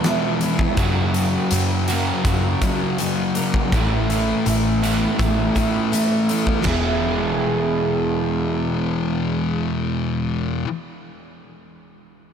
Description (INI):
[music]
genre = rock, shoegaze and dream pop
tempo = 82 BPM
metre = 4/4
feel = straight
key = E major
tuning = A4 = 441 Hz
[part]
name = picked twelve-string acoustic guitar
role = arpeggios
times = 0.0-10.7 s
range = E3 to G#4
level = -27 LUFS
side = right 3 dB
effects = lush chorus, tape echo
[part]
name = overdriven semi-hollow guitar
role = riff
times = 0.0-10.7 s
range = A2 to F#4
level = -24 LUFS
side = right 8 dB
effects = reverse reverb
[part]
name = thick fuzz guitar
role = riff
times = 0.0-10.7 s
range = E2 to A3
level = -23 LUFS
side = left 8 dB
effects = distortion, wide subtle chorus
[part]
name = huge arena drum kit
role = drums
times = 0.0-6.8 s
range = crash cymbal, hi-hat, kick drum, snare drum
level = -25 LUFS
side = equal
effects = none
[part]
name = vintage muted picked electric bass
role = bass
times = 0.8-10.6 s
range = E1 to F#2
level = -23 LUFS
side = equal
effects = none
[sound]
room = moderate huge ambient reverb, RT60 6.4 s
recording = none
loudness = -18 LUFS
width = side -8 dB against mid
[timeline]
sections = 0.0-6.7 A section; 6.7-9.6 B section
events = none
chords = 0.0 E; 0.8 F#; 3.7 Aadd9; 6.7 E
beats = 0.04 | 0.78 1.51 2.25 2.98 | 3.72 4.45 5.19 5.92 | 6.66 7.39 8.12 8.86